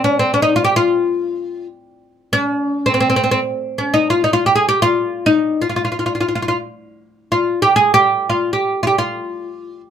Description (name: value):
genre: Persian modal ensemble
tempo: free time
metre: none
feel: none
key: unclear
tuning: A4 = 438 Hz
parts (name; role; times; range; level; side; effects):
- oud; solo; 0.0-9.8 s; C4 to Ab4; -14 LUFS; equal; none
room: moderate small room reverb, RT60 0.5 s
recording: band playing live in one room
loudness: -14 LUFS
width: side -8 dB against mid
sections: 0.0-3.5 A section; 3.5-9.9 A section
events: none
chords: none